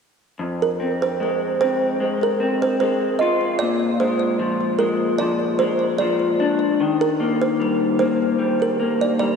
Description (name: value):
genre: indie pop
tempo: 75 BPM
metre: 4/4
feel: swing 55% on 16ths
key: F dorian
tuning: A4 = 440 Hz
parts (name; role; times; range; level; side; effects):
- electric guitar through a small old amp; accompaniment; 0.4-9.4 s; F2 to F4; -20 LUFS; left 3 dB; wide subtle chorus, vibrato effect
- kalimba; second line; 0.6-9.4 s; Bb4 to Eb5; -21 LUFS; right 3 dB; wide subtle chorus, ping-pong delay
room: wet huge ambient reverb, RT60 4.5 s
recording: dreamy mix soaked in reverb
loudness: -18 LUFS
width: side -6 dB against mid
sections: 0.4-9.4 A section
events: none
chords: 0.4 Fm; 3.6 Bb7; 6.8 Ebmaj7